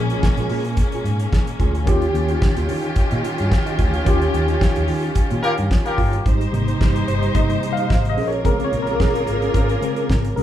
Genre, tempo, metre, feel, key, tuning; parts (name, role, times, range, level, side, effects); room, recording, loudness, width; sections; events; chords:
disco; 110 BPM; 4/4; straight; Bb dorian; A4 = 443 Hz
tine electric piano; accompaniment; 0.0-10.4 s; Bb2 to F5; -24 LUFS; left 1 dB; overdrive, fast stereo tremolo
clear studio string section; sustained chords; 0.0-10.4 s; Eb3 to C5; -25 LUFS; left 1 dB
fingered electric bass; bass; 0.0-10.4 s; G1 to Eb3; -23 LUFS; equal
mellow electric guitar; accompaniment; 0.1-10.4 s; Db4 to Eb5; -29 LUFS; right 7 dB; spring reverb
damped 70s drum kit; drums; 0.1-10.4 s; hi-hat, kick drum, snare drum; -20 LUFS; equal
clear horn section; stabs; 5.4-6.2 s; Bb3 to Bb4; -22 LUFS; left 2 dB
moderate large studio reverb, RT60 0.7 s; band playing live in one room; -17 LUFS; side -11 dB against mid
0.0-6.3 A section; 6.3-10.4 B section
band accent 4.1-6.3; tine electric piano solo 6.3-10.4
0.0 Bbm7; 1.9 Eb9; 6.3 Abmaj7; 8.2 Bbm7